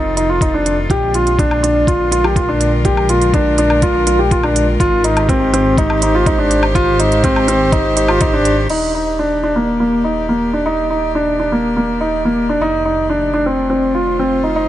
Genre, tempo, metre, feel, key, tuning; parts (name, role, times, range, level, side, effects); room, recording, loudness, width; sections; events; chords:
piano and strings electronica; 123 BPM; 4/4; straight; Eb major; A4 = 444 Hz
warm string quartet; sustained chords; 0.0-14.7 s; D3 to D5; -22 LUFS; equal; sidechain pumping
warm grand piano; riff; 0.0-14.7 s; Bb3 to G4; -14 LUFS; equal; tape echo
dark detuned saw bass; bass; 0.0-14.7 s; Eb1 to Bb1; -20 LUFS; equal; sidechain pumping
organic electronic drum kit; drums; 0.2-8.8 s; crash cymbal, hi-hat, woodblock; -22 LUFS; right 1 dB; overdrive, studio reverb
electronic kick drum; drums; 0.4-8.3 s; -18 LUFS; equal; studio reverb
light reverb; nothing above 10.7 kHz; -12 LUFS; side -13 dB against mid
0.0-8.7 A section; 8.7-14.7 B section
filter sweep on grand piano 0.0-8.7; fade-in on string quartet 8.7-14.7
0.0 F7; 0.9 Bb7; 4.8 Abmaj7; 8.7 Ebmaj7; 12.6 F7